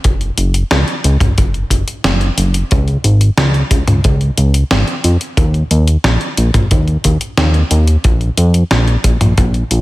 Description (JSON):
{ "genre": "synthwave", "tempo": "90 BPM", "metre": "4/4", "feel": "straight", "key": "Eb minor", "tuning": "A4 = 440 Hz", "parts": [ { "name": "fat analog bass", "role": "bass", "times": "0.0-9.8 s", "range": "Gb1 to F2", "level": "-12 LUFS", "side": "equal", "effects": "tube saturation, sidechain pumping" }, { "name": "detuned 8-bit digital drum machine", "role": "drums", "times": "0.0-9.8 s", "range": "hi-hat, snare drum, toms", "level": "-16 LUFS", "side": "equal", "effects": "small room ambience, gated reverb" }, { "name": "kick drum", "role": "drums", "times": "0.0-9.5 s", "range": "none", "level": "-15 LUFS", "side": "equal", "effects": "small room ambience" } ], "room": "studio ambience", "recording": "none", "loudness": "-11 LUFS", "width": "side -18 dB against mid", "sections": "0.0-9.8 A section", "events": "none", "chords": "none", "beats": "| 0.04 0.71 1.38 2.04 | 2.71 3.38 4.04 4.71 | 5.38 6.04 6.71 7.38 | 8.04 8.71 9.38" }